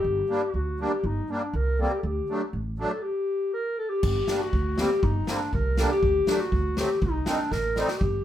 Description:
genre	klezmer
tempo	120 BPM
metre	2/4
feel	straight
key	G harmonic minor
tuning	A4 = 440 Hz
part	dark clarinet	melody	0.0-8.2 s	D4 to Bb4	-27 LUFS	left 2 dB	plate reverb
part	upright bass	bass	0.0-8.2 s	G1 to D2	-28 LUFS	right 1 dB	none
part	musette accordion	accompaniment	0.3-7.9 s	F#3 to Eb4	-29 LUFS	right 1 dB	none
part	street-band drum kit	drums	4.0-8.1 s	crash cymbal, kick drum, snare drum	-30 LUFS	equal	none
room	wet studio reverb, RT60 0.6 s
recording	heard from further back in the room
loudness	-24 LUFS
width	side -11 dB against mid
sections	0.0-4.0 A section; 4.0-8.2 A section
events	drum fill 7.5-8.0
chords	0.0 Gm; 2.0 D; 3.0 N.C.; 4.0 Gm; 6.0 D; 7.0 Cm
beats	| 0.04 0.54 | 1.04 1.54 | 2.04 2.54 | 3.04 3.53 | 4.03 4.53 | 5.03 5.53 | 6.03 6.52 | 7.02 7.52 | 8.02

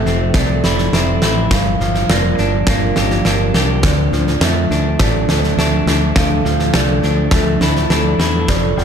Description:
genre	post-rock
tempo	103 BPM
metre	4/4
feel	straight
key	unclear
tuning	A4 = 438 Hz
part	dark analog pad	sustained chords	0.0-8.8 s	F3 to Bb4	-24 LUFS	equal	chorus
part	clean electric guitar	arpeggios	0.0-8.8 s	G2 to G4	-21 LUFS	left 4 dB	analog delay
part	vibraphone with soft mallets	arpeggios	0.0-8.8 s	A4 to F5	-23 LUFS	right 9 dB	analog delay
part	growling fingered electric bass	bass	0.0-8.8 s	F1 to F2	-18 LUFS	equal	overdrive
part	huge arena drum kit	drums	0.1-8.8 s	kick drum, snare drum	-16 LUFS	equal	none
room	light reverb, small room ambience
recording	none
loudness	-13 LUFS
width	side -7 dB against mid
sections	0.0-8.8 A section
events	none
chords	0.0 Fmaj7; 1.5 Gm7; 3.8 Dmadd9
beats	0.35 0.93 | 1.51 2.09 2.67 3.26 | 3.84 4.42 5.00 5.58 | 6.16 6.75 7.33 7.91 | 8.49

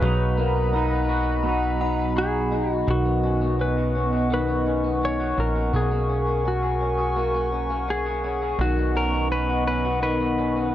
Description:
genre	dream pop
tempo	84 BPM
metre	4/4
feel	straight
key	B major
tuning	A4 = 440 Hz
part	clean lap steel guitar	melody	0.0-10.7 s	F#4 to C#5	-28 LUFS	equal	analog delay
part	clean electric guitar	accompaniment	0.0-3.4 s	B2 to D#4	-31 LUFS	right 6 dB	harmonic tremolo, lush chorus
part	hollow soft pad	sustained chords	0.0-10.7 s	B3 to C#6	-28 LUFS	right 1 dB	chorus
part	electric guitar through a small old amp	arpeggios	0.0-10.7 s	D#3 to G#4	-27 LUFS	left 3 dB	wide subtle chorus, analog delay
part	plucky analog bass	bass	0.0-10.7 s	A#1 to B1	-26 LUFS	equal	none
part	synth chime	texture	0.0-3.2 s	F#5 to C#6	-38 LUFS	left 3 dB	none
room	light reverb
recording	dry, gritty hardware recording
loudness	-21 LUFS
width	side -12 dB against mid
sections	0.0-2.9 A section; 2.9-10.7 B section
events	none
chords	0.0 Bmaj7; 2.9 Badd9; 5.7 F#add9/B; 8.6 Badd9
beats	| 0.02 0.73 1.45 2.16 | 2.88 3.59 4.30 5.02 | 5.73 6.45 7.16 7.88 | 8.59 9.30 10.02 10.73

